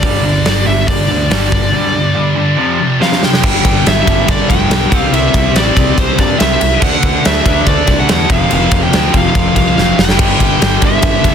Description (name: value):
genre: hard rock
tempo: 142 BPM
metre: 4/4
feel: straight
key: unclear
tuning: A4 = 439 Hz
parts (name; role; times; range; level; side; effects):
- smooth overdriven lead guitar; melody; 0.0-11.3 s; C5 to G5; -17 LUFS; equal; none
- overdriven semi-hollow guitar; riff; 0.0-11.3 s; F2 to D4; -20 LUFS; left 10 dB; phaser
- scooped high-gain guitar; riff; 0.0-11.3 s; F2 to D4; -20 LUFS; equal; distortion
- tight distorted guitar; riff; 0.0-11.3 s; F2 to D4; -19 LUFS; right 11 dB; distortion
- picked electric bass; bass; 0.0-11.3 s; F1 to G2; -17 LUFS; equal; none
- big rock drum kit; drums; 0.0-11.3 s; crash cymbal, hi-hat, kick drum, ride cymbal, snare drum; -13 LUFS; equal; soft clipping on kick
room: little or no reverb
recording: dense, heavily limited modern master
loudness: -9 LUFS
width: side -8 dB against mid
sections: 0.0-3.4 A section; 3.4-11.3 B section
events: drum fill 3.0-3.4, 9.8-10.2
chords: 0.0 G5; 2.6 F5; 3.4 G5; 4.9 C; 6.8 D; 8.3 F5; 10.2 G5